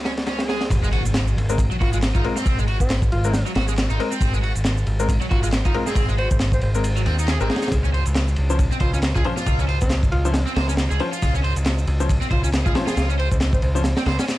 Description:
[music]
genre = breakbeat, breaks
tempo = 137 BPM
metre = 4/4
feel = swing 57% on 16ths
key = Ab mixolydian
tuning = A4 = 439 Hz
[part]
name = modern bright picked electric bass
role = bass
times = 0.0-14.2 s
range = Ab1 to Eb2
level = -22 LUFS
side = equal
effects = none
[part]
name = swell and impact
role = sound effects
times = 0.0-2.5 s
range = none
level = -30 LUFS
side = equal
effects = none
[part]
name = crunchy overdriven guitar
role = riff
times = 0.1-14.2 s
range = Gb3 to C5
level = -28 LUFS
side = right 1 dB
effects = digital delay
[part]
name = crunchy breakbeat drum kit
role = drums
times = 0.1-14.4 s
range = kick drum, ride cymbal, snare drum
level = -22 LUFS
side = equal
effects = high-pass filter on kick, high-pass filter on cymbals, high-pass filter on snare, high-pass filter on room
[part]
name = breathy alto saxophone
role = melody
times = 0.4-13.7 s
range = C4 to C5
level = -30 LUFS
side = equal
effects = AM radio sound, digital delay
[part]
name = electronic shaker and handclaps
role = drums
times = 0.7-14.4 s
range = none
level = -33 LUFS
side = right 1 dB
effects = none
[part]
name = bright concert grand piano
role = stabs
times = 1.5-13.8 s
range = F3 to C5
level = -27 LUFS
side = left 4 dB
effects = vintage 12-bit sampler grit, digital delay
[sound]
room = light reverb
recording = dark, warm production, vinyl crackle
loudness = -18 LUFS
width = side -16 dB against mid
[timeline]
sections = 0.7-14.4 A section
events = swell 0.0-0.7; drop 0.7-14.4; impact 0.7-2.5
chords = 0.0 Db5; 0.7 Ab; 7.7 Dbmaj7

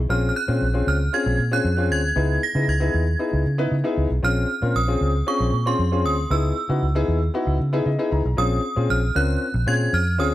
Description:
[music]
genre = early-eighties boogie funk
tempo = 116 BPM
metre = 4/4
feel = straight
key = Bb minor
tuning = A4 = 445 Hz
[part]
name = vintage muted fingered electric bass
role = bass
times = 0.0-10.3 s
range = Bb1 to Db3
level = -21 LUFS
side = equal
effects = none
[part]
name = synth chime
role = melody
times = 0.1-10.3 s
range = C6 to Bb6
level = -26 LUFS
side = right 2 dB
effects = ensemble chorus
[part]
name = warm concert grand piano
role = accompaniment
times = 0.1-10.3 s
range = Cb4 to Bb5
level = -24 LUFS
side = left 3 dB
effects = none
[sound]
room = little or no reverb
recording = dry, close 1970s-style studio recording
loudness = -19 LUFS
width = side -14 dB against mid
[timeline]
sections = 0.0-8.4 A section; 8.4-10.3 B section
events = grand piano fill 7.6-8.4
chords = 0.1 Bbm9; 2.2 Dbm9; 4.2 Bbm9; 6.3 Dbm9; 8.4 Bbm9

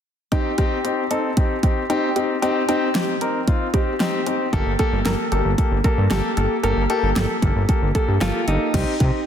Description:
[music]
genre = synth-pop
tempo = 114 BPM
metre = 4/4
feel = straight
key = C dorian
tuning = A4 = 438 Hz
[part]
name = clear concert grand piano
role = accompaniment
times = 0.3-9.2 s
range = Bb3 to Bb4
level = -22 LUFS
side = left 2 dB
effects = none
[part]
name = analog pluck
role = arpeggios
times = 0.3-8.2 s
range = Eb4 to G5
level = -29 LUFS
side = right 2 dB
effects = chorus, low-pass filter, ping-pong delay
[part]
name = pop drum kit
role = drums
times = 0.3-9.1 s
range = crash cymbal, hi-hat, kick drum, snare drum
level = -22 LUFS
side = equal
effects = none
[part]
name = fat analog bass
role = bass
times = 4.5-9.1 s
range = G1 to C3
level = -21 LUFS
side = equal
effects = none
[part]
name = direct-recorded clean electric guitar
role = melody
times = 8.2-9.3 s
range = Eb4 to F4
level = -24 LUFS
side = right 2 dB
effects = ping-pong delay
[sound]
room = moderate lush hall reverb, RT60 1.7 s, digital ambience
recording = dense, heavily limited modern master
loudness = -18 LUFS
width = side -9 dB against mid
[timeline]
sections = 0.3-8.7 A section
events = filter sweep on synth arpeggio sound 0.3-8.7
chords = 0.3 Cm; 4.5 Gmadd9; 8.7 Cm

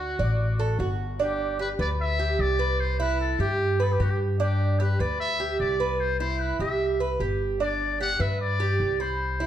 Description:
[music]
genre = latin, Cuban son and guajira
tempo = 150 BPM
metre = 4/4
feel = straight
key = G major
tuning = A4 = 440 Hz
[part]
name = trumpet with metal mute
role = melody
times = 0.0-9.5 s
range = F#4 to F#5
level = -29 LUFS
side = left 4 dB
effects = none
[part]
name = Cuban tres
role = arpeggios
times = 0.0-9.5 s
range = D4 to B5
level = -27 LUFS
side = right 4 dB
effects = none
[part]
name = upright bass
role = bass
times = 0.0-9.5 s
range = G1 to G2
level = -27 LUFS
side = left 1 dB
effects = none
[sound]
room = moderate large studio reverb, RT60 1.4 s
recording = dark, warm production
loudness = -23 LUFS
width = side -10 dB against mid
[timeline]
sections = 0.0-1.2 A section; 1.2-9.5 B section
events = none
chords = 0.0 D; 1.2 G6; 2.8 Cmaj7; 4.4 G6; 6.0 Cmaj7; 7.6 G

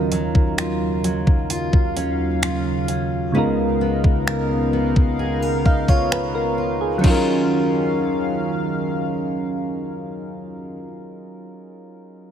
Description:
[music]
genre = contemporary R&B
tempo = 65 BPM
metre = 4/4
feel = straight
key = Eb minor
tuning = A4 = 439 Hz
[part]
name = soft electric-piano-like synth keys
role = accompaniment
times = 0.0-12.3 s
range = Db3 to F5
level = -24 LUFS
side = right 1 dB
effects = chorus
[part]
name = chorused pulse-width pad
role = sustained chords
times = 0.0-10.8 s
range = Db2 to F5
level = -25 LUFS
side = equal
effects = sidechain pumping
[part]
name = picked steel-string acoustic guitar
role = arpeggios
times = 0.0-10.9 s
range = Db3 to Bb4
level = -26 LUFS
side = left 1 dB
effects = digital delay
[part]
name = clean 12-bit digital drum machine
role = drums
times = 0.1-7.3 s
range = crash cymbal, finger snaps, hi-hat, kick drum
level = -18 LUFS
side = equal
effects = none
[sound]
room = light reverb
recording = none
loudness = -18 LUFS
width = side -9 dB against mid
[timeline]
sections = 0.0-7.0 A section; 7.0-10.7 B section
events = none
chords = 0.0 Ebm9; 3.3 Db13; 7.0 Ebm9

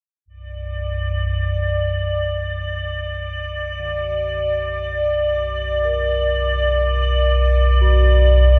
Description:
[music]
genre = dark ambient drone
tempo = free time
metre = none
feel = none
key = B harmonic minor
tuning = A4 = 444 Hz
[part]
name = deep rumbling drone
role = drone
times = 0.4-8.6 s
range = B1 to F#2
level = -22 LUFS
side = equal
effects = built-in reverb, lush chorus
[part]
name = icy glass pad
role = texture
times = 0.7-8.6 s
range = D5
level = -23 LUFS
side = equal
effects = chorus, built-in reverb, shimmer reverb
[part]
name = bronze singing bowl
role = arpeggios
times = 3.8-8.6 s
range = D3 to A#4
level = -34 LUFS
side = equal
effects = delay, shimmer reverb
[sound]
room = wet cathedral reverb, RT60 4.9 s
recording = dark, warm production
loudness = -20 LUFS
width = mono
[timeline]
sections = 0.3-8.6 A section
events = fade-in on singing bowl 0.3-8.6; filter sweep on synth drone 0.3-8.6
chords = 0.3 Bm

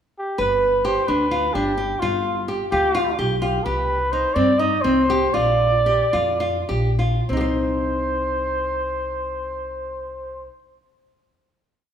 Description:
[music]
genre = contemporary instrumental, chamber music in an uneven meter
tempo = 193-258 BPM (eighths)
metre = 7/8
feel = straight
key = C harmonic minor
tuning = A4 = 442 Hz
[part]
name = warm flugelhorn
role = melody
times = 0.2-10.5 s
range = F4 to Eb5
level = -22 LUFS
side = equal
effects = none
[part]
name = nylon-string guitar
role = arpeggios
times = 0.4-10.6 s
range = C4 to C5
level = -22 LUFS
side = equal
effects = none
[part]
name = upright bass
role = bass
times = 0.4-10.5 s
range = G1 to G2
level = -26 LUFS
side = equal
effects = none
[sound]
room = wet recital hall reverb, RT60 1.6 s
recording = none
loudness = -18 LUFS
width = side -8 dB against mid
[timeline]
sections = 0.0-0.4 pickup bar; 0.4-7.3 A section; 7.3-11.7 final chord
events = slowing down 3.7-7.3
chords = 0.4 G7; 3.7 Cm; 5.3 Bb; 7.3 Cm

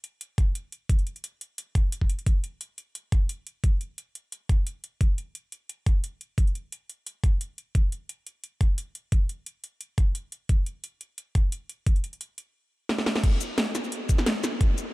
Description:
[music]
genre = drum and bass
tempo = 175 BPM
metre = 4/4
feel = swing 54% on 16ths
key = none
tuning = none
[part]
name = drum and bass drum kit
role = drums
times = 0.0-14.9 s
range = crash cymbal, hi-hat, shaker, snare drum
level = -30 LUFS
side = equal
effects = none
[part]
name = electronic kick drum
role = drums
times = 0.4-14.7 s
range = none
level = -22 LUFS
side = equal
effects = none
[sound]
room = little or no reverb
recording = none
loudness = -25 LUFS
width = side -21 dB against mid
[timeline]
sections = 0.0-13.2 A section; 13.2-14.9 B section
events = drum fill 12.9-13.2; drop 13.2-14.9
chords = none

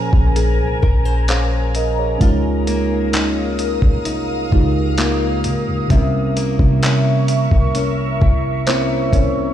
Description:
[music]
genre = contemporary R&B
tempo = 65 BPM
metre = 4/4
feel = straight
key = unclear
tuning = A4 = 444 Hz
[part]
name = muted felt-like synth keys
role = accompaniment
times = 0.0-9.5 s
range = Bb2 to F5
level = -20 LUFS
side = right 2 dB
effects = chorus
[part]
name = ethereal airy pad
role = sustained chords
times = 0.0-9.5 s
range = Bb4 to Eb6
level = -24 LUFS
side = equal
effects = ensemble chorus, built-in reverb, phaser, sidechain pumping
[part]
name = nylon-string guitar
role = arpeggios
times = 0.0-9.5 s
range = C3 to C5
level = -24 LUFS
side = left 6 dB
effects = digital delay
[part]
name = clean 808-style bass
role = bass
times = 0.1-9.5 s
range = Bb1 to Db3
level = -19 LUFS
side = equal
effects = none
[part]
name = dusty soul sampler-style drum kit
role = drums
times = 0.1-9.3 s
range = handclaps, hi-hat, kick drum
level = -19 LUFS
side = equal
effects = vintage 12-bit sampler grit
[sound]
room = little or no reverb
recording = played on a big sound system in a bare room, stone room reverb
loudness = -14 LUFS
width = side -10 dB against mid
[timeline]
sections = 0.0-9.5 A section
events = none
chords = 0.0 Bbm9; 2.2 Db69; 5.9 C7b9

